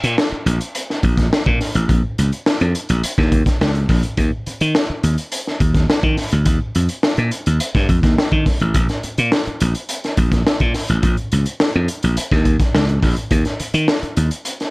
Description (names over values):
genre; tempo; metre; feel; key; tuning
funk; 105 BPM; 4/4; straight; Bb dorian; A4 = 440 Hz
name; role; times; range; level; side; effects
slap bass; bass; 0.0-14.3 s; A1 to Eb3; -16 LUFS; equal; none
crunchy breakbeat drum kit; drums; 0.0-14.7 s; hi-hat, kick drum, snare drum; -18 LUFS; equal; none
room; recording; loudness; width
little or no reverb; none; -15 LUFS; side -26 dB against mid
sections
0.0-14.7 A section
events
none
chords
none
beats
0.17 0.75 1.32 | 1.89 2.46 3.03 3.60 | 4.18 4.75 5.32 5.89 | 6.46 7.03 7.60 8.18 | 8.75 9.32 9.89 10.46 | 11.03 11.60 12.17 12.74 | 13.31 13.88 14.46